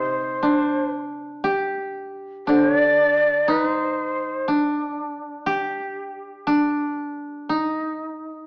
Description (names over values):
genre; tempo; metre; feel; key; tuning
japanese traditional, Japanese chamber music; 59 BPM; 4/4; rubato; unclear; A4 = 440 Hz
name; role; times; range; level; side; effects
breathy shakuhachi; melody; 0.0-4.5 s; C5 to D5; -20 LUFS; equal; none
koto; second line; 0.0-8.5 s; D4 to G4; -23 LUFS; equal; none
koto; accompaniment; 0.0-5.5 s; C3 to D3; -25 LUFS; equal; none
room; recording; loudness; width
moderate recital hall reverb, RT60 1.4 s; worn, warbling old tape, cassette tape, warbly pitch drift, small speaker sound; -19 LUFS; side -35 dB against mid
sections
0.0-8.5 A section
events
none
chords
none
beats
0.43 | 1.46 2.49 3.50 4.50 | 5.48 6.49 7.50